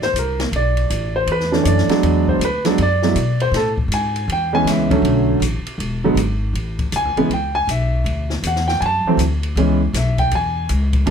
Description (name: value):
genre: jazz piano trio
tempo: 159 BPM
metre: 4/4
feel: swing 64% on 8ths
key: A major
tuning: A4 = 440 Hz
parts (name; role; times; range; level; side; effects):
- warm grand piano; melody; 0.0-11.1 s; C#3 to A5; -18 LUFS; right 2 dB; none
- upright bass; bass; 0.0-11.1 s; E1 to B2; -20 LUFS; left 1 dB; none
- open jazz drum kit; drums; 0.0-11.1 s; hi-hat, kick drum, ride cymbal, snare drum; -26 LUFS; left 2 dB; none
room: light reverb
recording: close, detailed microphones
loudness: -16 LUFS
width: side -7 dB against mid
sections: 0.0-6.5 A section; 6.5-11.1 A section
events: grand piano solo 0.0-11.1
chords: 0.0 F#(#9) (rootless); 0.5 Bm11; 2.0 E9; 3.5 Amaj9; 5.0 Bm7; 5.8 E; 6.5 Amaj9; 8.1 Dadd9; 9.6 C#m7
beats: 0.15 | 0.53 0.90 1.28 1.66 | 2.03 2.41 2.79 3.16 | 3.54 3.91 4.29 4.67 | 5.04 5.42 5.80 6.17 | 6.55 6.93 7.30 7.68 | 8.06 8.43 8.81 9.19 | 9.56 9.94 10.32 10.69 | 11.07